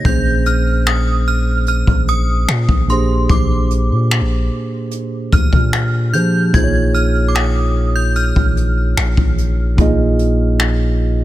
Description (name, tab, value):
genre	contemporary R&B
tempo	74 BPM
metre	4/4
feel	straight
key	Bb dorian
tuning	A4 = 441 Hz
part	synth chime	melody	0.0-11.2 s	C6 to Ab6	-22 LUFS	right 1 dB	ensemble chorus, ping-pong delay
part	mellow tine electric piano	accompaniment	0.0-11.2 s	Bb2 to Eb5	-19 LUFS	right 2 dB	none
part	jazz brush drum kit	drums	0.0-10.8 s	finger snaps, hi-hat, kick drum	-17 LUFS	left 1 dB	none
part	long sustained 808-style bass	bass	0.1-11.2 s	Bb1 to F3	-16 LUFS	equal	none
room	small room ambience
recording	none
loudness	-13 LUFS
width	side -15 dB against mid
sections	0.0-11.2 A section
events	none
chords	0.1 Bbm9; 2.9 Bb13; 6.5 Eb9sus4/Bb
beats	| 0.05 0.86 1.67 2.48 | 3.29 4.11 4.92 5.73 | 6.54 7.35 8.16 8.97 | 9.78 10.59